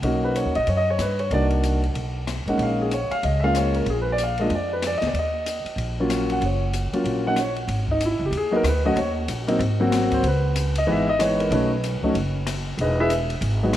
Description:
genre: jazz piano trio.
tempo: 188 BPM.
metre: 4/4.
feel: swing 62% on 8ths.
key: Eb minor, G# minor from 7.7 s.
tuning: A4 = 442 Hz.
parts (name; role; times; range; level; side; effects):
dark baby grand piano; melody; 0.0-13.8 s; E3 to F#5; -22 LUFS; equal; none.
upright bass; bass; 0.0-13.8 s; E1 to G2; -25 LUFS; equal; none.
open jazz drum kit; drums; 0.0-13.8 s; hi-hat, kick drum, ride cymbal, rim click, snare drum; -32 LUFS; left 3 dB; none.
room: moderate echo chamber reverb, RT60 2.2 s.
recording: 1960s-style stereo.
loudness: -20 LUFS.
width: side -12 dB against mid.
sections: 0.0-7.7 A section; 7.7-13.8 B section.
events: none.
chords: 0.0 Bmaj7; 1.3 Cm7b5; 1.9 B7(no3); 2.6 Bbm7; 3.9 Bb; 5.1 Ebm7; 7.7 G#m7; 9.0 D#5; 9.6 G#7; 10.2 C#m7; 11.5 B7; 12.8 Emaj7.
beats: | 0.03 0.35 0.67 0.99 | 1.31 1.63 1.95 2.27 | 2.59 2.91 3.23 3.55 | 3.87 4.18 4.50 4.82 | 5.14 5.46 5.78 6.10 | 6.42 6.74 7.06 7.38 | 7.69 8.01 8.33 8.65 | 8.97 9.29 9.61 9.92 | 10.24 10.56 10.88 11.20 | 11.51 11.83 12.15 12.47 | 12.79 13.11 13.42 13.74.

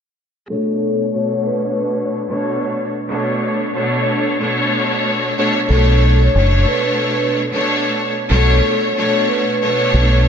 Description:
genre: hip hop, boom-bap hip-hop.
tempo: 92 BPM.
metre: 4/4.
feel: swing 56% on 16ths.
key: B minor.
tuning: A4 = 440 Hz.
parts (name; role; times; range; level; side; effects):
vibraphone with soft mallets; melody; 0.5-10.2 s; A4 to C#5; -21 LUFS; left 1 dB; high-pass filter, low-pass filter, diffuse ambient delay.
clear studio string section; accompaniment; 0.5-10.3 s; B2 to C#5; -17 LUFS; equal; high-pass filter, low-pass filter.
deep dub fingered electric bass; bass; 5.7-10.3 s; F#1 to B1; -12 LUFS; equal; none.
room: wet lush hall reverb, RT60 1.9 s, small room ambience.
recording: dreamy mix soaked in reverb.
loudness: -14 LUFS.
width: side -7 dB against mid.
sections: 0.5-5.7 A section; 5.7-10.3 B section.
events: filter sweep 0.5-5.7.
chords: 0.5 Bm9.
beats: | 0.49 1.14 1.79 2.44 | 3.10 3.75 4.40 5.05 | 5.70 6.36 7.01 7.66 | 8.31 8.96 9.62 10.27.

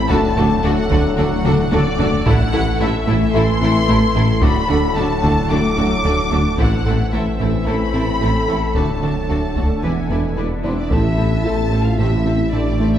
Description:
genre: cinematic, hybrid orchestral and electronic film score.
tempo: 111 BPM.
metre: 4/4.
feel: straight.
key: A dorian.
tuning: A4 = 441 Hz.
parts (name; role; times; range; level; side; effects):
rich studio violin section; melody; 0.0-12.9 s; D5 to D6; -24 LUFS; left 2 dB; none.
bright trombone section; sustained chords; 0.0-12.2 s; A2 to A3; -28 LUFS; right 1 dB; none.
mellow French horn section; sustained chords; 0.0-13.0 s; A3 to A4; -27 LUFS; left 3 dB; none.
organ-like drone; sustained chords; 0.0-13.0 s; A3 to F#5; -26 LUFS; equal; ensemble chorus, built-in reverb, phaser.
warm sub bass; bass; 0.0-13.0 s; D1 to A1; -26 LUFS; equal; none.
clear symphonic violin section; second line; 0.1-13.0 s; E4 to A5; -27 LUFS; left 1 dB; none.
rich symphonic viola section; accompaniment; 0.1-12.9 s; E3 to A4; -27 LUFS; equal; none.
tight sequenced synth; arpeggios; 0.1-13.0 s; D3 to A4; -27 LUFS; left 1 dB; none.
chorused synth bass; riff; 0.1-13.0 s; D2 to A3; -24 LUFS; right 1 dB; none.
mellow tuba; bass; 0.1-13.0 s; E1 to D2; -24 LUFS; equal; none.
rich symphonic cello section; bass; 0.1-13.0 s; D2 to D3; -25 LUFS; right 1 dB; none.
rich symphonic double bass section; bass; 0.1-13.0 s; E1 to D2; -26 LUFS; right 1 dB; none.
taiko ensemble; drums; 0.1-11.4 s; none; -23 LUFS; equal; none.
room: wet recital hall reverb, RT60 1.5 s.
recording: heard from further back in the room.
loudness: -15 LUFS.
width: side -10 dB against mid.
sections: 0.0-10.9 A section; 10.9-13.0 B section.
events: drum fill 1.4-2.3.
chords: 0.1 D; 2.3 Am; 4.4 D; 6.6 Am; 8.7 D; 9.8 E7; 10.9 Am.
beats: | 0.10 0.64 1.18 1.72 | 2.26 2.80 3.34 3.88 | 4.42 4.96 5.50 6.04 | 6.58 7.12 7.67 8.21 | 8.75 9.29 9.83 10.37 | 10.91 11.45 11.99 12.53.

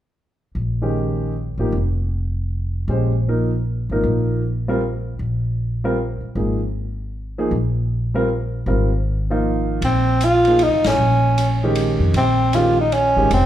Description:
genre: modal jazz.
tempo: 155 BPM.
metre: 3/4.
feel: swing 64% on 8ths.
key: Bb dorian.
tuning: A4 = 439 Hz.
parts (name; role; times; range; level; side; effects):
upright bass; bass; 0.5-13.5 s; F1 to F2; -20 LUFS; equal; none.
warm grand piano; accompaniment; 0.8-13.3 s; Eb3 to C5; -22 LUFS; right 1 dB; none.
breathy tenor saxophone; melody; 9.8-13.5 s; C4 to F4; -16 LUFS; right 1 dB; none.
open jazz drum kit; drums; 9.8-13.4 s; hi-hat, ride cymbal, snare drum; -29 LUFS; left 1 dB; none.
room: wet large studio reverb, RT60 1.2 s.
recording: band playing live in one room.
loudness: -17 LUFS.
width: side -12 dB against mid.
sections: 0.6-9.8 A section; 9.8-13.5 B section.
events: band accent 10.8.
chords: 0.6 Bbm7; 5.2 Absus2; 9.8 Bbm9.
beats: | 0.56 0.95 1.34 | 1.72 2.11 2.50 | 2.88 3.27 3.65 | 4.04 4.42 4.81 | 5.20 5.58 5.97 | 6.36 6.74 7.13 | 7.51 7.90 8.29 | 8.67 9.06 9.45 | 9.83 10.22 10.60 | 10.99 11.38 11.76 | 12.15 12.54 12.92 | 13.31.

